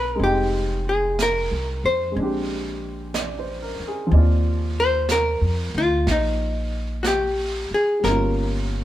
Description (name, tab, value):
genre	jazz ballad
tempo	61 BPM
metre	4/4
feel	swing 66% on 8ths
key	Eb major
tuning	A4 = 438 Hz
part	archtop guitar, miked and amplified	melody	0.0-8.8 s	Eb4 to C5	-22 LUFS	left 1 dB	none
part	warm baby grand piano	accompaniment	0.0-8.8 s	F3 to G5	-28 LUFS	equal	none
part	upright bass	bass	0.0-8.8 s	F1 to F2	-24 LUFS	equal	none
part	vintage brush drum kit	drums	0.2-8.8 s	brushed snare drum, hi-hat, snare drum	-32 LUFS	right 3 dB	none
room	light reverb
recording	band playing live in one room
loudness	-20 LUFS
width	side -13 dB against mid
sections	0.0-8.8 A section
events	none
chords	0.2 Fm7; 2.2 Bb13; 4.1 Ebsus2; 8.0 Gm7b5